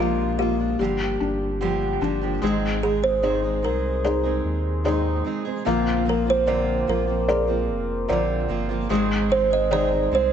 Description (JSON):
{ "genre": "pop ballad", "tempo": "74 BPM", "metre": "4/4", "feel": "straight", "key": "unclear", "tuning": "A4 = 439 Hz", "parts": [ { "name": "kalimba", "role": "melody", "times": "0.0-10.3 s", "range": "F4 to Eb5", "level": "-24 LUFS", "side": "right 3 dB", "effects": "none" }, { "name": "felt-muted upright piano", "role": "accompaniment", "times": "0.0-10.3 s", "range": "G3 to D5", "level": "-25 LUFS", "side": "left 5 dB", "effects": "none" }, { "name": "fingerpicked steel-string acoustic guitar", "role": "arpeggios", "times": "0.0-10.3 s", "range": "G2 to Ab4", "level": "-28 LUFS", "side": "right 8 dB", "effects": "tape echo" }, { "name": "sub bass with octave", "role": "bass", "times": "0.0-10.3 s", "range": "F1 to Eb2", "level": "-28 LUFS", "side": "equal", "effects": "none" } ], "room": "moderate lush hall reverb, RT60 1.6 s, small room ambience", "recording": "nothing above 8.0 kHz", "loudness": "-20 LUFS", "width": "side -8 dB against mid", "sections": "0.0-2.4 A section; 2.4-10.3 B section", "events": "none", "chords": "0.0 Bb7; 0.8 Gm7; 2.4 Ab; 5.7 Bbadd9; 8.9 Ab" }